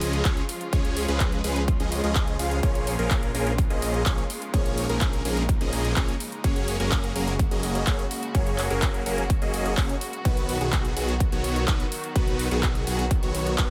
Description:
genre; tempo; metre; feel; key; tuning
EDM, festival progressive house; 126 BPM; 4/4; straight; F# major; A4 = 441 Hz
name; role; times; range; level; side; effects
rich studio string section; sustained chords; 0.0-13.7 s; C#3 to F#4; -37 LUFS; equal; sidechain pumping
supersaw chords; riff; 0.0-13.7 s; D#3 to E#5; -30 LUFS; equal; phaser, cassette tape, sidechain pumping, tape echo
detuned saw bass; bass; 0.0-13.7 s; F#1 to C#2; -32 LUFS; equal; chorus, sidechain pumping
big-room dance drum kit; drums; 0.0-13.7 s; handclaps, hi-hat; -35 LUFS; equal; overdrive
electronic kick drum; drums; 0.3-13.7 s; none; -27 LUFS; equal; none
room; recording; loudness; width
digital ambience; none; -25 LUFS; mono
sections
0.0-13.7 A section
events
none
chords
0.0 C#; 2.6 A#m7; 6.4 F#add9; 10.3 B

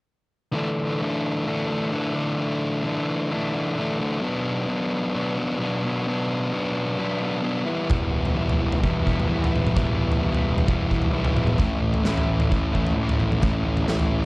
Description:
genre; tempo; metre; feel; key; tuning
indie rock; 130 BPM; 4/4; straight; D major; A4 = 440 Hz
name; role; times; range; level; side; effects
sludgy distorted guitar; riff; 0.5-14.3 s; A2 to E4; -24 LUFS; left 1 dB; overdrive
fuzz picked electric bass; bass; 7.9-14.3 s; E1 to A2; -27 LUFS; equal; overdrive
big rock drum kit; drums; 7.9-14.1 s; kick drum, snare drum, toms; -23 LUFS; equal; none
room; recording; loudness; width
moderate studio reverb, RT60 0.6 s; worn, warbling old tape, cassette tape, warbly pitch drift; -21 LUFS; side -24 dB against mid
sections
0.5-14.3 A section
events
none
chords
0.5 Dsus2; 4.2 Bm; 7.7 Em; 11.6 A

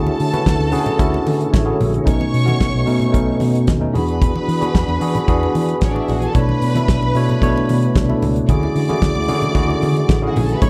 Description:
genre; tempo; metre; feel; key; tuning
disco; 112 BPM; 4/4; straight; unclear; A4 = 440 Hz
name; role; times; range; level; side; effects
clear symphonic string section; second line; 0.0-10.7 s; C#4 to D6; -28 LUFS; equal; none
tine electric piano; accompaniment; 0.0-10.7 s; B2 to F#5; -22 LUFS; equal; overdrive
tonewheel organ; sustained chords; 0.0-10.7 s; D3 to A4; -27 LUFS; equal; chorus vibrato, slow rotary speaker
fingered electric bass; bass; 0.0-10.7 s; A1 to E3; -23 LUFS; equal; none
congas; percussion; 0.1-10.7 s; none; -29 LUFS; equal; none
damped 70s drum kit; drums; 0.2-10.7 s; hi-hat, kick drum, snare drum; -20 LUFS; equal; none
room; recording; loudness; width
light reverb, small room ambience; dark, warm production; -17 LUFS; mono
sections
0.0-10.7 A section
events
tine electric piano fill 0.5-2.1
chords
0.0 Dmaj9#11; 2.1 B9; 3.9 E9; 6.3 Bm11; 8.5 Dmaj9#11

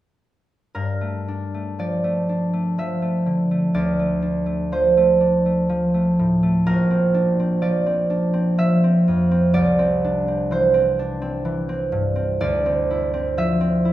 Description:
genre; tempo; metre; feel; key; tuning
classical, solo harp piece; 62 BPM; 3/4; rubato; G dorian; A4 = 440 Hz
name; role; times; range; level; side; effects
concert harp; solo; 0.7-13.9 s; Bb1 to E5; -18 LUFS; right 1 dB; none
room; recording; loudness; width
wet recital hall reverb, RT60 1.5 s; heard from further back in the room; -18 LUFS; side -13 dB against mid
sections
0.7-13.9 A section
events
none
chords
0.7 Gm9; 3.7 Dm7; 6.7 Bbmaj9; 9.5 Cadd9; 12.4 Dm9

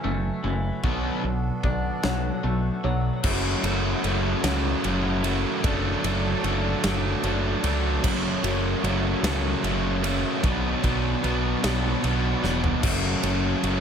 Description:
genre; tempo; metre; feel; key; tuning
post-rock; 50 BPM (dotted quarters); 6/8; straight; F# minor; A4 = 439 Hz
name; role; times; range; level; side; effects
hand-pumped harmonium; sustained chords; 0.0-13.8 s; F#3 to A5; -36 LUFS; right 3 dB; none
felt-muted upright piano; arpeggios; 0.0-3.2 s; C#5 to E5; -38 LUFS; right 4 dB; digital delay
twangy electric guitar; arpeggios; 0.0-3.2 s; F#2 to D4; -34 LUFS; left 3 dB; digital delay
crunchy overdriven guitar; riff; 0.0-13.8 s; B2 to F#4; -28 LUFS; right 10 dB; none
raw garage guitar; riff; 0.0-13.8 s; F#2 to D4; -28 LUFS; left 14 dB; overdrive
growling fingered electric bass; bass; 0.0-13.8 s; E1 to C#2; -27 LUFS; equal; overdrive
big rock drum kit; drums; 0.8-13.8 s; crash cymbal, kick drum, ride cymbal, snare drum, toms; -30 LUFS; equal; none
room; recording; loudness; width
small room ambience; none; -22 LUFS; side -7 dB against mid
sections
0.0-3.2 A section; 3.2-13.8 B section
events
build-up 0.0-3.2; drum fill 12.4-12.8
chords
0.0 F#m7; 0.8 Bm7; 3.2 F#m7; 5.6 Dmaj7/F#; 8.0 F#m7; 10.4 Bm7; 12.8 F#m7

